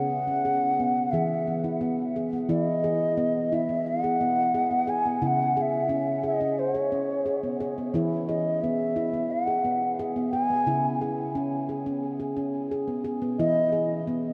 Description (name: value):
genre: world meditative, meditative tuned percussion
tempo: 88 BPM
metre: 4/4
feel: straight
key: E major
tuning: A4 = 440 Hz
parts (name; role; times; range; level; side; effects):
- mellow bansuri; melody; 0.0-14.0 s; C#5 to G#5; -29 LUFS; equal; none
- handpan; arpeggios; 0.0-14.3 s; C#3 to G#4; -30 LUFS; equal; delay
room: wet huge ambient reverb, RT60 8.1 s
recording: in a vast, echoing space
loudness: -26 LUFS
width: mono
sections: 0.0-2.5 A section; 2.5-14.3 B section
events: none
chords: 0.0 C#5; 1.1 E; 5.2 C#m; 7.9 E; 10.7 C#m; 13.4 E